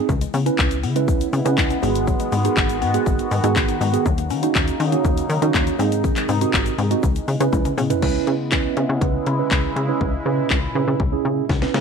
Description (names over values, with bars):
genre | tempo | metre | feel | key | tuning
dance-pop | 121 BPM | 4/4 | straight | C# dorian | A4 = 440 Hz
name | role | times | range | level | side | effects
mellow tine electric piano | accompaniment | 0.0-11.8 s | B3 to B4 | -23 LUFS | right 13 dB | slow stereo tremolo, sidechain pumping
sweeping resonant pad | sustained chords | 0.1-11.8 s | A#2 to F#4 | -27 LUFS | left 2 dB | chorus, phaser, sidechain pumping
mallet-like synth pluck | arpeggios | 0.1-7.9 s | D#3 to F#4 | -28 LUFS | left 15 dB | chorus, sidechain pumping, slapback echo
plucky analog bass | bass | 0.1-11.8 s | G#1 to D#3 | -23 LUFS | left 2 dB | sidechain pumping
house drum kit | drums | 0.1-11.8 s | crash cymbal, handclaps, hi-hat, kick drum, shaker, snare drum, toms | -22 LUFS | left 2 dB | none
egg shaker | percussion | 0.1-8.0 s | none | -45 LUFS | left 19 dB | none
room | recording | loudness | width
light reverb | 1960s-style stereo with parts hard left and right | -17 LUFS | side -6 dB against mid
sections
0.0-8.0 A section; 8.0-11.8 B section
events
drum fill 7.5-8.0, 11.5-11.8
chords
0.1 C#m7; 1.8 G#m7; 4.1 D#m7; 5.8 G#; 7.0 C#m7